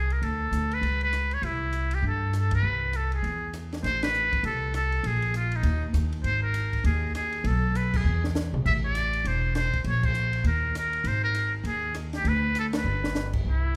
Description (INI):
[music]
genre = jazz, small-group swing and bop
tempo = 200 BPM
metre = 4/4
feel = swing 61% on 8ths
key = unclear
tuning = A4 = 442 Hz
[part]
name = trumpet with metal mute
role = melody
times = 0.0-13.8 s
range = Eb4 to E5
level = -31 LUFS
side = equal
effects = none
[part]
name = upright bass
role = bass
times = 0.0-13.8 s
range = E1 to G2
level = -29 LUFS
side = equal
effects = none
[part]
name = compact cocktail drum kit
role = drums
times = 0.1-13.4 s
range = crash cymbal, hi-hat, kick drum, ride cymbal, rim click, snare drum, toms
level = -37 LUFS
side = equal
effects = none
[sound]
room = moderate recital hall reverb, RT60 1.7 s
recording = recorded in a church or concert hall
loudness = -27 LUFS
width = mono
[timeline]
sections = 0.0-3.8 A section; 3.8-13.5 B section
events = band accent 2.5, 4.0, 7.9, 10.0, 12.7; drum fill 8.0-8.6, 12.8-13.2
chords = 0.2 D5; 0.8 Bsus2/C#; 1.4 C6; 3.2 E; 3.8 Amadd9; 5.0 Bb7(no3); 5.6 N.C.; 6.2 Absus2; 7.4 N.C.; 8.0 E; 8.6 Am; 9.8 Bbmadd9; 10.4 Eb5; 11.0 Ab5; 12.2 Bm/D; 12.8 G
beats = | 0.22 0.52 0.82 1.13 | 1.43 1.73 2.03 2.33 | 2.63 2.94 3.24 3.54 | 3.84 4.14 4.44 4.74 | 5.04 5.34 5.64 5.94 | 6.24 6.54 6.84 7.14 | 7.44 7.74 8.04 8.34 | 8.64 8.94 9.24 9.54 | 9.84 10.14 10.44 10.74 | 11.04 11.35 11.65 11.95 | 12.25 12.55 12.85 13.15 | 13.45 13.75